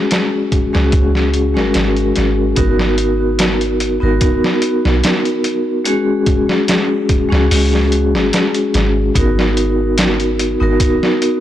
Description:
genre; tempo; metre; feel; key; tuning
trip hop; 73 BPM; 4/4; straight; G# minor; A4 = 441 Hz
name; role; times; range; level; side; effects
vibraphone with medium hard mallets; accompaniment; 0.0-11.4 s; G#3 to A#4; -15 LUFS; left 1 dB; tremolo, tape echo
trip hop sampler-style drum kit; drums; 0.1-11.4 s; hi-hat, kick drum, snare drum; -18 LUFS; equal; none
soft 808-style bass; bass; 0.8-10.8 s; G#1 to C#2; -17 LUFS; right 1 dB; tube saturation
room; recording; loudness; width
light reverb; blown-out, overdriven recording, overdrive; -12 LUFS; side -12 dB against mid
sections
0.0-2.6 A section; 2.6-11.4 B section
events
none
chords
0.0 C#sus4; 2.6 G#m7; 5.9 C#sus4; 9.2 G#m7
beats
0.11 0.93 1.76 | 2.58 3.40 4.22 5.04 | 5.87 6.69 7.51 8.33 | 9.15 9.97 10.80

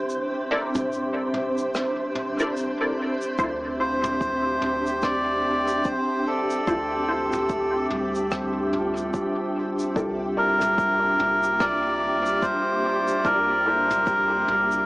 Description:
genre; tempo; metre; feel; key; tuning
ambient dub; 73 BPM; 4/4; swing 59% on 16ths; unclear; A4 = 440 Hz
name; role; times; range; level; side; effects
granular cloud pad; sustained chords; 0.0-14.9 s; Bb3 to E5; -28 LUFS; equal; built-in reverb
wind-like tuned noise texture; texture; 0.0-14.9 s; G4 to C5; -32 LUFS; equal; built-in reverb
vintage brush drum kit; drums; 0.1-14.9 s; rim click, shaker, toms; -35 LUFS; equal; dub echo
filtered dub chord stab; stabs; 0.5-13.9 s; E4 to A5; -30 LUFS; equal; phaser, ensemble chorus, dub echo
soft dub sub bass; bass; 3.4-14.9 s; C2 to D2; -38 LUFS; equal; none
electronic kick drum; drums; 3.4-14.3 s; none; -31 LUFS; equal; none
melodica; melody; 3.8-14.9 s; A4 to D5; -23 LUFS; equal; dub echo
vibraphone with medium mallets; arpeggios; 7.5-14.9 s; G3 to E5; -30 LUFS; equal; dub echo
room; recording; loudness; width
light reverb, small room ambience; echo-heavy mix, small speaker sound; -21 LUFS; side -22 dB against mid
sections
0.0-14.9 A section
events
none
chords
0.0 C13; 3.4 Dm7; 10.0 C13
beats
| 0.10 0.92 1.74 2.56 | 3.39 4.21 5.03 5.85 | 6.67 7.50 8.32 9.14 | 9.96 10.78 11.61 12.43 | 13.25 14.07

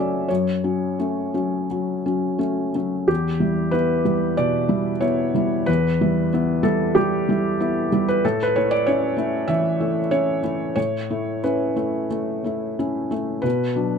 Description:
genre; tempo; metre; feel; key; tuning
neoclassical minimalist piano; 84-97 BPM; 4/4; rubato; E dorian; A4 = 440 Hz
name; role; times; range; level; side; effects
felt-muted upright piano; solo; 0.0-14.0 s; E2 to E5; -19 LUFS; equal; none
room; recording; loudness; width
light reverb; close, detailed microphones; -19 LUFS; side -6 dB against mid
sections
0.0-3.1 A section; 3.1-14.0 A section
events
none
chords
0.0 F#m; 3.1 Em; 8.2 Aadd9; 13.4 Bm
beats
| 0.29 1.00 1.71 2.41 | 3.09 3.74 4.38 5.02 | 5.68 6.32 6.96 7.60 | 8.23 8.86 9.48 10.12 | 10.77 11.43 12.10 12.78 | 13.44

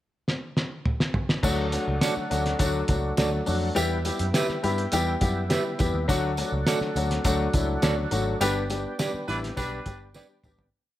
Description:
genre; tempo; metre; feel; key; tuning
uptempo 1960s-style soul; 103 BPM; 4/4; straight; D major; A4 = 440 Hz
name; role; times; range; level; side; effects
cloth-damped thuddy drum kit; drums; 0.3-10.7 s; crash cymbal, hi-hat, kick drum, snare drum, toms; -28 LUFS; equal; none
warm baby grand piano; accompaniment; 1.4-10.6 s; F#3 to B5; -27 LUFS; left 3 dB; none
mellow tonewheel organ; sustained chords; 1.4-10.7 s; F#4 to G5; -35 LUFS; right 2 dB; chorus vibrato, slow rotary speaker
vintage muted picked electric bass; bass; 1.4-10.7 s; G1 to G2; -29 LUFS; equal; none
tambourine; percussion; 1.4-10.6 s; none; -37 LUFS; right 4 dB; none
semi-hollow electric guitar; stabs; 2.0-10.3 s; F#4 to E5; -31 LUFS; right 5 dB; none
clear horn section; second line; 8.4-10.0 s; G3 to B4; -34 LUFS; right 2 dB; none
room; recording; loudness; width
light reverb, small room ambience; none; -23 LUFS; side -14 dB against mid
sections
0.0-1.4 pickup bar; 1.4-10.7 verse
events
drum fill 0.3-1.4, 10.2-10.7; grand piano fill 4.3-6.1; fade-out 8.4-10.7; band accent 8.4-10.7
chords
0.0 N.C.; 1.4 D; 3.8 Em; 6.1 D; 8.4 G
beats
0.28 0.86 | 1.44 2.02 2.60 3.18 | 3.77 4.35 4.93 5.51 | 6.09 6.67 7.25 7.83 | 8.41 8.99 9.57 10.15

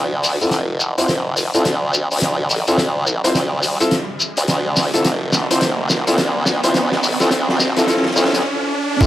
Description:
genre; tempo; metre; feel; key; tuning
glitch hop; 106 BPM; 4/4; swing 63% on 16ths; D minor; A4 = 440 Hz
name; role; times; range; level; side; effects
formant-sweep wobble bass; bass; 0.0-9.1 s; F1 to D2; -20 LUFS; equal; chorus, tube saturation, high-pass filter
riser and sub drop; sound effects; 2.1-9.1 s; none; -24 LUFS; right 1 dB; none
oversized low-tuned drum kit; drums; 0.2-9.1 s; hi-hat, snare drum; -22 LUFS; equal; none
shekere; percussion; 0.2-9.1 s; none; -21 LUFS; left 2 dB; none
clear grand piano; stabs; 0.4-9.1 s; C4 to C5; -21 LUFS; left 1 dB; sidechain pumping, low-pass filter, tape echo
electronic kick drum; drums; 9.0-9.1 s; none; -13 LUFS; equal; overdrive
room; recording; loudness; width
moderate studio reverb, RT60 0.5 s; dry, gritty hardware recording, high-pass filter; -15 LUFS; side -13 dB against mid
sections
0.0-9.0 A section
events
build-up 0.0-9.0; drum fill 0.0-8.4; filter sweep on grand piano 0.0-9.0; riser 2.1-9.0; stop 8.4-9.0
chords
0.0 Dm9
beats
0.52 1.09 1.65 | 2.22 2.78 3.35 3.92 | 4.48 5.05 5.62 6.18 | 6.75 7.31 7.88 8.45 | 9.01

